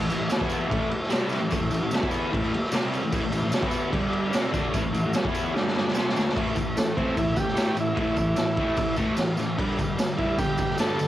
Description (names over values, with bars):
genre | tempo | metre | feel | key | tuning
garage rock duo or trio | 148 BPM | 4/4 | straight | A mixolydian | A4 = 440 Hz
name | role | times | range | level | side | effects
combo organ | sustained chords | 0.0-11.1 s | D4 to D5 | -38 LUFS | equal | none
fuzz guitar | riff | 0.0-11.1 s | G2 to E4 | -26 LUFS | left 1 dB | distortion, cassette tape
raw garage drum kit | drums | 0.1-11.1 s | crash cymbal, kick drum, snare drum | -26 LUFS | equal | cassette tape
tambourine | percussion | 0.1-11.1 s | none | -43 LUFS | right 3 dB | none
overdriven combo organ | melody | 6.8-11.1 s | A3 to A4 | -27 LUFS | right 1 dB | cassette tape
room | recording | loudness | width
light reverb | home recording on cassette | -23 LUFS | side -13 dB against mid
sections
0.0-6.4 A section; 6.4-11.1 B section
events
drum fill 5.5-6.4; transistor combo organ solo 6.4-11.1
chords
0.0 A; 3.9 G5; 4.3 A; 5.5 G5; 5.9 A; 9.6 G